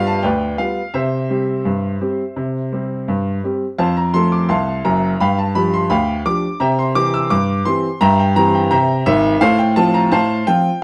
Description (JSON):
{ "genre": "ragtime piano", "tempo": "85 BPM", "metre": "2/4", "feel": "straight", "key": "F major", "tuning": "A4 = 441 Hz", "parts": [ { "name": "warm upright piano", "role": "solo", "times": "0.0-10.8 s", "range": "Gb1 to E6", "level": "-17 LUFS", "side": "equal", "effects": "none" } ], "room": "moderate stone room reverb, RT60 1.1 s", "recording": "band playing live in one room", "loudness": "-17 LUFS", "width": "mono", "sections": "0.0-10.8 A section", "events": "none", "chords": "0.0 G7; 1.0 C; 3.8 F; 5.2 G5; 6.6 C; 8.0 C/G; 9.4 F/A" }